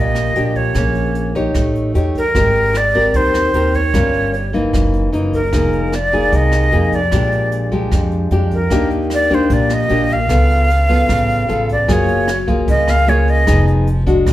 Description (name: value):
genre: bossa nova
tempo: 151 BPM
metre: 4/4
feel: straight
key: Eb major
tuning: A4 = 440 Hz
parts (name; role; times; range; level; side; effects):
- breathy bright jazz flute; melody; 0.0-13.7 s; Bb4 to E#5; -17 LUFS; right 1 dB; none
- nylon-string guitar; accompaniment; 0.0-14.3 s; F2 to Db5; -18 LUFS; left 2 dB; none
- upright bass; bass; 0.0-14.3 s; F1 to F2; -18 LUFS; equal; none
- jazz brush drum kit; drums; 0.1-14.3 s; hi-hat, kick drum, rim click; -22 LUFS; equal; none
room: wet studio reverb, RT60 0.7 s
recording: heard from further back in the room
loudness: -13 LUFS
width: side -14 dB against mid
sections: 0.0-11.9 A section; 11.9-14.3 B section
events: none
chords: 0.0 Ebmaj7; 0.8 Bbm7; 1.6 A7#11; 2.3 Abmaj9; 3.9 Gm7b5; 4.7 Gb6; 5.5 Fm7; 7.1 Bb6; 8.7 Ebmaj7; 10.3 Dbaug7; 11.9 F#maj9; 13.5 Fm7b5